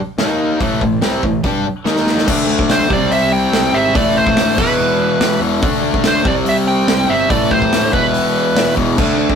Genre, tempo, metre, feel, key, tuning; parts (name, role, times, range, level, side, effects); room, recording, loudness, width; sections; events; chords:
hard rock; 143 BPM; 4/4; straight; A4 = 440 Hz
cranked stack guitar; riff; 0.2-9.4 s; E2 to G4; -22 LUFS; right 5 dB; overdrive, phaser
distorted electric guitar; riff; 0.2-9.4 s; E2 to G4; -17 LUFS; left 4 dB; overdrive
fuzz picked electric bass; bass; 0.2-9.4 s; E1 to G2; -24 LUFS; equal; overdrive
big rock drum kit; drums; 0.2-9.4 s; crash cymbal, hi-hat, kick drum, snare drum; -18 LUFS; right 1 dB
dark smooth lead guitar; melody; 2.7-8.7 s; B4 to G5; -17 LUFS; right 2 dB; overdrive
moderate small room reverb, RT60 0.5 s; rough rehearsal-room recording, warm saturation; -12 LUFS; side -7 dB against mid
0.0-2.3 A section; 2.3-9.4 B section
drum fill 1.9-2.3
0.2 D#5; 0.6 Am; 1.9 D#5; 2.3 D5; 2.9 C5; 4.0 Am; 4.6 E5; 5.6 D5; 6.3 C5; 7.3 Am; 7.9 E5